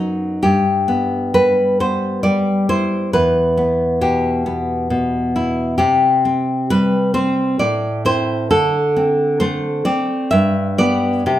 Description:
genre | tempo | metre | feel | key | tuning
romantic piece for solo classical guitar | 66 BPM | 3/4 | rubato | E minor | A4 = 440 Hz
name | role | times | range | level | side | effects
nylon-string guitar | solo | 0.0-11.4 s | E2 to E5 | -15 LUFS | equal | none
room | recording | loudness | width
moderate large studio reverb, RT60 0.9 s | band playing live in one room | -15 LUFS | side -13 dB against mid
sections
0.0-11.4 A section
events
none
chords
0.4 Em/G; 3.1 Em; 5.8 C5; 7.6 Am; 8.5 D5; 10.3 G

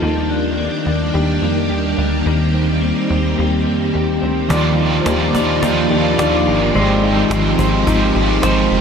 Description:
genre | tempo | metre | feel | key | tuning
dream pop | 107 BPM | 4/4 | straight | Eb major | A4 = 441 Hz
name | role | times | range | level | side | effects
string machine, violins | sustained chords | 0.0-8.8 s | Eb3 to D5 | -18 LUFS | right 1 dB | ensemble chorus
electric guitar at the edge of break-up | arpeggios | 0.0-8.8 s | Eb3 to D5 | -19 LUFS | left 3 dB | lush chorus, tape echo
plucky analog bass | bass | 0.0-8.8 s | F1 to F2 | -20 LUFS | equal | none
overdriven electric guitar | accompaniment | 4.5-8.8 s | Eb3 to G4 | -20 LUFS | right 4 dB | harmonic tremolo, lush chorus
cajon | drums | 4.5-8.6 s | none | -27 LUFS | equal | none
celesta | texture | 5.0-6.8 s | C5 | -31 LUFS | left 2 dB | none
room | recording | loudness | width
wet cathedral reverb, RT60 6.4 s | dreamy mix soaked in reverb | -14 LUFS | side -6 dB against mid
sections
0.0-4.5 A section; 4.5-8.8 B section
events
none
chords
0.0 Ebmaj7; 4.5 Ebmaj9; 6.8 Abmaj7

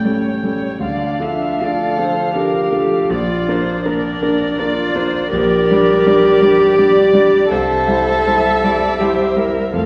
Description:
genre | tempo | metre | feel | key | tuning
classical, slow romantic movement for piano quartet | 81 BPM | 3/4 | rubato | unclear | A4 = 439 Hz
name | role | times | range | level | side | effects
muted violin | melody | 0.0-9.9 s | A4 to E5 | -24 LUFS | equal | none
muted cello | second line | 0.0-9.9 s | A3 to A4 | -18 LUFS | equal | none
clear concert grand piano | accompaniment | 0.0-9.9 s | A1 to D5 | -22 LUFS | equal | none
muted viola | accompaniment | 0.0-9.9 s | D5 to G5 | -26 LUFS | equal | none
room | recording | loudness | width
wet recital hall reverb, RT60 1.3 s | heard from further back in the room | -15 LUFS | mono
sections
0.0-9.9 A section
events
none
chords
0.0 A7; 0.8 Dm; 3.1 Bb; 5.3 Gm/Bb; 7.5 C

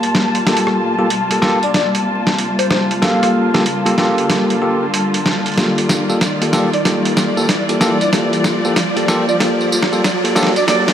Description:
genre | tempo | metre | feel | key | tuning
glitch hop | 94 BPM | 4/4 | swing 64% on 16ths | G minor | A4 = 441 Hz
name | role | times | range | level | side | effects
muted studio string section | sustained chords | 0.0-10.9 s | G3 to A5 | -19 LUFS | left 1 dB | vintage 12-bit sampler grit
bell-like tine electric piano | stabs | 0.0-10.9 s | Bb3 to A5 | -18 LUFS | equal | vintage 12-bit sampler grit, tape echo
boom bap sampler-style drum kit | drums | 0.0-10.9 s | hi-hat, rim click, snare drum, tambourine | -18 LUFS | equal | studio reverb
riser | sound effects | 0.0-10.9 s | none | -23 LUFS | equal | none
sync lead | melody | 1.6-10.8 s | C5 to F5 | -22 LUFS | right 1 dB | wide subtle chorus, tape echo
room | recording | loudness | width
light reverb, digital ambience | vinyl crackle, high-pass filter | -13 LUFS | side -9 dB against mid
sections
0.0-10.9 A section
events
build-up 0.0-10.9; drum fill 0.0-10.9; riser 0.0-10.9; filter sweep on analog synth lead 0.0-10.9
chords
0.0 Gm9

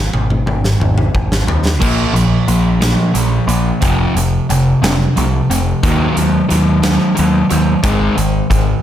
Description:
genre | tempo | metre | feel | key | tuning
quiet-loud alternative rock | 60 BPM (dotted quarters) | 6/8 | straight | unclear | A4 = 439 Hz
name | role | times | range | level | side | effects
growling picked electric bass | bass | 0.0-8.7 s | F1 to Eb2 | -16 LUFS | equal | overdrive
huge arena drum kit | drums | 0.1-8.7 s | crash cymbal, hi-hat, kick drum, snare drum, toms | -18 LUFS | equal | none
fuzz guitar | riff | 1.8-8.8 s | F2 to Bb3 | -14 LUFS | equal | distortion
room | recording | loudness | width
light reverb | none | -12 LUFS | side -11 dB against mid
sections
0.0-1.8 A section; 1.8-8.8 B section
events
drum fill 0.0-1.8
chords
0.0 Ab5; 1.8 Bb5; 3.8 F5; 5.8 Ebm; 7.8 Ab5

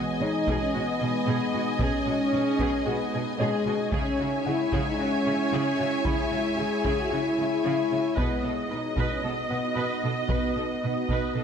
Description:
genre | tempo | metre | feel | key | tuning
cinematic, hybrid orchestral and electronic film score | 113 BPM | 4/4 | straight | C# minor | A4 = 440 Hz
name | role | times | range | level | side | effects
clear symphonic violin section | second line | 0.0-11.4 s | D#5 to G#5 | -34 LUFS | left 5 dB | none
rich symphonic viola section | accompaniment | 0.0-11.4 s | F#4 to D#5 | -32 LUFS | right 3 dB | none
ethereal airy pad | sustained chords | 0.0-11.4 s | G#3 to D#5 | -32 LUFS | right 2 dB | ensemble chorus, built-in reverb
mellow French horn section | sustained chords | 0.0-11.4 s | G#3 to G#4 | -28 LUFS | left 2 dB | none
rich symphonic cello section | bass | 0.0-11.4 s | B2 to C#3 | -32 LUFS | right 3 dB | none
felt-muted upright piano | texture | 0.0-11.4 s | B3 to C#6 | -40 LUFS | left 2 dB | none
solo taiko drums | drums | 0.5-11.4 s | none | -32 LUFS | equal | none
room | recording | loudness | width
wet scoring stage reverb, RT60 1.9 s | none | -24 LUFS | side -7 dB against mid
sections
0.0-11.4 A section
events
none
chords
0.0 G#m/B; 3.9 C#m; 8.2 B

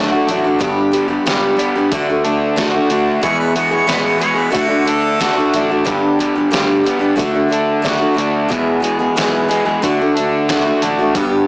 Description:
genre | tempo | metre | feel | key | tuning
folk rock and heartland rock | 91 BPM | 4/4 | straight | unclear | A4 = 440 Hz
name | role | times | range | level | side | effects
picked steel-string acoustic guitar | accompaniment | 0.0-11.5 s | E2 to G#4 | -15 LUFS | equal | none
crunchy overdriven guitar | riff | 0.0-11.5 s | E2 to F#4 | -20 LUFS | right 1 dB | none
modern bright fingered electric bass | bass | 0.0-11.5 s | G1 to E2 | -26 LUFS | equal | none
lo-fi sampler-style drum kit | drums | 0.3-11.3 s | hi-hat, kick drum, snare drum | -22 LUFS | equal | overdrive
warm harmonica | second line | 3.2-5.5 s | F#4 to C#5 | -19 LUFS | equal | none
room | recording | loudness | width
moderate echo chamber reverb, RT60 2.6 s | blown-out, overdriven recording, overdrive, small speaker sound | -13 LUFS | side -27 dB against mid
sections
0.0-11.5 A section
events
none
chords
0.0 D; 0.6 G; 1.9 D; 3.2 E; 4.5 D; 5.9 G; 7.2 D; 8.5 E; 9.8 D

